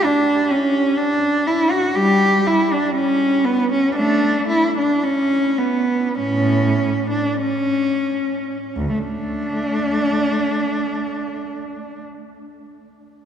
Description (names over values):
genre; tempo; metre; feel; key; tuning
classical, baroque-style suite movement for unaccompanied cello; 42-65 BPM; 4/4; rubato; unclear; A4 = 440 Hz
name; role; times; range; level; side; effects
rich cello; solo; 0.0-12.0 s; D2 to G4; -17 LUFS; equal; none
room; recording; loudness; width
wet cathedral reverb, RT60 4.5 s; dark, warm production; -16 LUFS; side -8 dB against mid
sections
0.0-8.8 A section; 8.8-13.3 B section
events
slowing down 0.0-8.8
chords
none